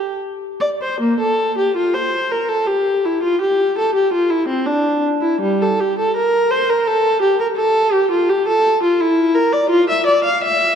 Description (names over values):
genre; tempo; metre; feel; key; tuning
classical, baroque-style suite movement for unaccompanied viola; 83 BPM; 3/4; uneven beats, rubato; unclear; A4 = 440 Hz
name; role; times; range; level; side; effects
rich viola; solo; 0.0-10.8 s; G3 to F5; -15 LUFS; equal; none
room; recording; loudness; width
wet church reverb, RT60 2.9 s; dark, warm production; -14 LUFS; side -7 dB against mid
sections
1.0-10.8 A section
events
none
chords
none